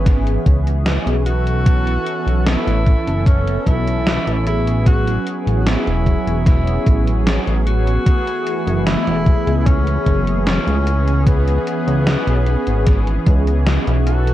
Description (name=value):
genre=vaporwave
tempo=75 BPM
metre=4/4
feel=straight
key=unclear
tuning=A4 = 440 Hz
part: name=clear tenor saxophone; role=melody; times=0.0-14.3 s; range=B3 to F#4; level=-24 LUFS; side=equal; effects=tape echo
part: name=mellow synth brass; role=accompaniment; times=0.0-14.3 s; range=E3 to A4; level=-22 LUFS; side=right 1 dB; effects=lush chorus
part: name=warbly tape-like pad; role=sustained chords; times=0.0-14.3 s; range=A3 to C#6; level=-32 LUFS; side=equal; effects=chorus, built-in reverb
part: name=chorused synth bass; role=bass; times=0.0-14.3 s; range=E1 to C#2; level=-17 LUFS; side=equal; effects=none
part: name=electronic kick drum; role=drums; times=0.1-13.4 s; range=none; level=-14 LUFS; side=equal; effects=none
part: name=gated 80s digital drum machine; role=drums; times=0.1-14.3 s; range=hi-hat, snare drum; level=-22 LUFS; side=equal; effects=gated reverb, gated reverb snare
room=little or no reverb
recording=dark, warm production, cassette tape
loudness=-14 LUFS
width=side -14 dB against mid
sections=0.0-14.3 A section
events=none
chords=0.0 C#m7; 1.3 B9sus4; 4.5 Amaj13; 10.9 C#m7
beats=0.06 0.86 | 1.66 2.46 3.26 4.06 | 4.86 5.66 6.46 7.26 | 8.06 8.86 9.66 10.46 | 11.26 12.06 12.86 13.66